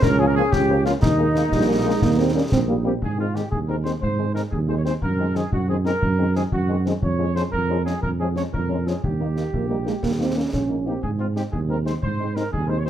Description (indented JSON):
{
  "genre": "military-style march for wind band",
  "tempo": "120 BPM (dotted quarters)",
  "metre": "6/8",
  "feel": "straight",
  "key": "Ab major",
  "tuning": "A4 = 440 Hz",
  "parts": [
    { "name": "dark trumpet section", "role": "melody", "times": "0.0-12.9 s", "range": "Eb4 to Db5", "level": "-28 LUFS", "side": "right 1 dB", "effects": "none" },
    { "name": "bright large flute ensemble", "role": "second line", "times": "0.0-2.8 s", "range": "Eb4 to Bb4", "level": "-25 LUFS", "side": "left 5 dB", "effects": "none" },
    { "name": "dark trombone section", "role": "sustained chords", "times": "0.0-2.8 s", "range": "Bb3 to Db4", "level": "-28 LUFS", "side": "right 2 dB", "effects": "none" },
    { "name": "mellow tuba", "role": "bass", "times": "0.0-12.9 s", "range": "Bb1 to Ab2", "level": "-23 LUFS", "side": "right 2 dB", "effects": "none" },
    { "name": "concert snare drum and concert bass drum", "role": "drums", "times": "0.0-12.9 s", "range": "none", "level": "-26 LUFS", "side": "left 1 dB", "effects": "none" },
    { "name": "mellow French horn section", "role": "accompaniment", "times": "0.2-12.9 s", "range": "Eb3 to Eb4", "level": "-28 LUFS", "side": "left 5 dB", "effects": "none" },
    { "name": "mellow euphonium", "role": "second line", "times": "1.5-2.9, 9.5-11.0 s", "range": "G3 to Db4", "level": "-24 LUFS", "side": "right 4 dB", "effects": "none" }
  ],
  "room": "light reverb",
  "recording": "close, detailed microphones",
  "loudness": "-19 LUFS",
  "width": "side -10 dB against mid",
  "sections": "0.0-3.0 A section; 3.0-12.9 B section",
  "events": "none",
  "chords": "0.0 Bbm/Db; 1.0 Ebsus4; 2.0 Eb; 3.0 Ab; 5.0 Ab7/Gb; 7.0 Db/F; 9.0 Eb; 11.0 Ab",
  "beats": "| 0.02 0.52 | 1.02 1.52 | 2.02 2.52 | 3.02 3.52 | 4.02 4.52 | 5.02 5.52 | 6.02 6.52 | 7.02 7.52 | 8.03 8.53 | 9.03 9.53 | 10.03 10.53 | 11.03 11.53 | 12.03 12.53"
}